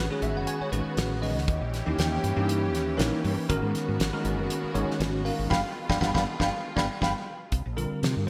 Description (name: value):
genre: electric jazz fusion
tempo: 119 BPM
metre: 4/4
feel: swing 54% on 16ths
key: unclear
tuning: A4 = 440 Hz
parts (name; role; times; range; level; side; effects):
- bell-like tine electric piano; accompaniment; 0.0-8.3 s; D3 to B5; -31 LUFS; equal; ensemble chorus
- rich symphonic string section; sustained chords; 0.0-7.5 s; B2 to G4; -39 LUFS; equal; none
- woody fretless electric bass; bass; 0.0-8.3 s; F#1 to C3; -33 LUFS; equal; ensemble chorus
- damped 70s drum kit; drums; 0.2-8.2 s; hi-hat, kick drum, snare drum; -33 LUFS; equal; gated reverb
room: moderate lush hall reverb, RT60 1.7 s, studio ambience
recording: bright 1980s-style digital production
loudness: -28 LUFS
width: mono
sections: 0.0-7.5 A section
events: band accent 5.5-7.5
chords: 0.0 A69; 1.5 D#7b9; 3.5 G#m11; 5.5 G7b9; 7.5 Csus2